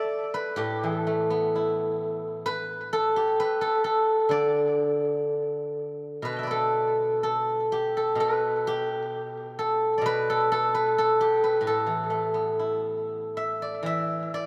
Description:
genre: chinese traditional, Chinese solo plucked strings.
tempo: 60-67 BPM.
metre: 2/4.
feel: rubato.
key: unclear.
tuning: A4 = 440 Hz.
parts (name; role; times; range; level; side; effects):
steel-string zither; solo; 0.0-14.5 s; A2 to A5; -26 LUFS; equal; delay.
room: wet plate reverb, RT60 3.1 s.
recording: dreamy mix soaked in reverb.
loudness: -26 LUFS.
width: mono.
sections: 0.0-6.2 A section; 6.2-14.5 B section.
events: none.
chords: none.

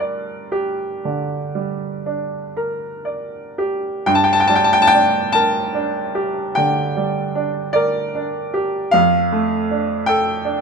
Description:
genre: classical, romantic nocturne for solo piano.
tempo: 38-54 BPM (dotted quarters).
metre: 12/8.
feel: rubato.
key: G minor.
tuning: A4 = 440 Hz.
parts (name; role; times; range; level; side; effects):
bright baby grand piano; solo; 0.0-10.6 s; F2 to A5; -17 LUFS; equal; none.
room: moderate large studio reverb, RT60 1.2 s.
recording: close, detailed microphones.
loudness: -16 LUFS.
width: side -5 dB against mid.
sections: 0.0-4.1 A section; 4.1-10.6 A section.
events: none.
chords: 0.0 Gm; 8.9 Dm/F.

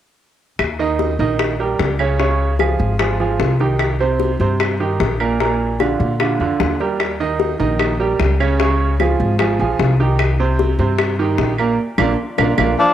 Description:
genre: Afro-Cuban jazz.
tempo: 150 BPM.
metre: 4/4.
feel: straight.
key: Eb major.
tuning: A4 = 438 Hz.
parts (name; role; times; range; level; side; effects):
upright bass; bass; 0.6-12.7 s; Ab1 to Bb2; -19 LUFS; left 1 dB; none.
bongos; percussion; 0.6-12.7 s; none; -22 LUFS; left 10 dB; none.
claves; percussion; 0.6-12.7 s; none; -25 LUFS; right 7 dB; none.
bright upright piano; accompaniment; 0.8-12.7 s; Bb2 to Eb5; -19 LUFS; right 5 dB; cassette tape.
mellow cor anglais; melody; 12.8-12.9 s; D4; -12 LUFS; equal; cassette tape.
breathy tenor saxophone; second line; 12.8-12.9 s; F3; -18 LUFS; left 7 dB; cassette tape.
room: moderate spring reverb, RT60 2.1 s.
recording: home recording on cassette.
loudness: -15 LUFS.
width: side -11 dB against mid.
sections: 0.6-12.9 A section.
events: band accent 11.8-12.9.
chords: 0.6 Eb; 2.2 Db; 3.8 Cm7; 5.4 Bb; 7.0 Eb; 8.6 Db; 10.2 Cm7; 11.8 Bb.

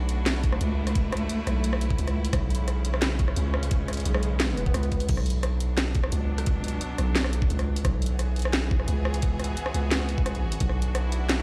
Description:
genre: half-time drum and bass.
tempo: 174 BPM.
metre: 4/4.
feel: half-time.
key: B dorian.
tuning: A4 = 442 Hz.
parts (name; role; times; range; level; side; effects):
bright studio string section; sustained chords; 0.0-11.4 s; B2 to G#4; -36 LUFS; equal; sidechain pumping.
long sustained 808-style bass; bass; 0.0-11.4 s; B1 to C#2; -29 LUFS; equal; none.
drum and bass drum kit; drums; 0.1-11.4 s; crash cymbal, hi-hat, rim click, snare drum; -32 LUFS; equal; none.
electronic kick drum; drums; 0.4-10.7 s; none; -28 LUFS; equal; none.
swell; sound effects; 4.5-5.1 s; none; -38 LUFS; equal; none.
room: little or no reverb.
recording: played on a big sound system in a bare room, large studio reverb.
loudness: -26 LUFS.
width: mono.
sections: 0.0-11.4 A section.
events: swell 4.5-5.1.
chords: 0.0 Dadd9/B; 2.3 C#m7/B; 5.1 Bm; 7.8 E/B; 10.6 Dadd9/B.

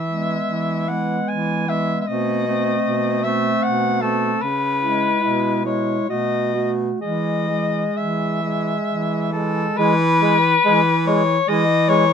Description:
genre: classical, lyrical piece for single-reed quartet.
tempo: 63-78 BPM.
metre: 3/4.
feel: rubato.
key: E major.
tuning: A4 = 438 Hz.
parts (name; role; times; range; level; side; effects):
warm soprano saxophone; melody; 0.0-12.1 s; A4 to G#5; -20 LUFS; left 4 dB; none.
clear baritone saxophone; bass; 0.0-12.1 s; B2 to E3; -23 LUFS; right 2 dB; none.
mellow alto saxophone; second line; 0.1-12.1 s; B3 to G#4; -26 LUFS; right 9 dB; none.
clear clarinet; accompaniment; 0.1-12.0 s; G#3 to A3; -24 LUFS; left 2 dB; none.
room: light reverb.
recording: minimal, uncompressed stereo recording.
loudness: -17 LUFS.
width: side -7 dB against mid.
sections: 0.0-9.8 A section; 9.8-12.1 B section.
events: none.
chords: 0.0 E; 2.1 B7b9; 4.4 C#m7; 5.2 E/B; 6.1 B7; 7.0 E.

